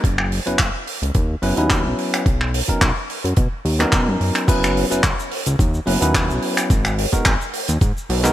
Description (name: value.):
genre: nu-disco, nu disco.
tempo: 108 BPM.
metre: 4/4.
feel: swing 54% on 16ths.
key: F# mixolydian.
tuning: A4 = 440 Hz.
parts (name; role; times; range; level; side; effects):
bell-like tine electric piano; accompaniment; 0.0-8.3 s; F#3 to B4; -23 LUFS; equal; digital delay.
fat analog bass; bass; 0.0-8.3 s; F#1 to B2; -21 LUFS; equal; none.
electronic kick drum; drums; 0.0-7.9 s; none; -19 LUFS; equal; overdrive.
swinging big-band drum kit; drums; 0.0-8.3 s; crash cymbal, finger snaps, handclaps, hi-hat, shaker; -22 LUFS; equal; none.
room: light reverb, small room reverb.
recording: bright 1980s-style digital production.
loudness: -16 LUFS.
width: side -13 dB against mid.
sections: 0.0-4.5 A section; 4.5-8.3 B section.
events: filter sweep on tine electric piano 0.0-4.5; drop 4.5-8.3.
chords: 0.0 F#7sus4; 2.3 Bmaj9; 4.5 F#7sus4; 6.7 G#m9.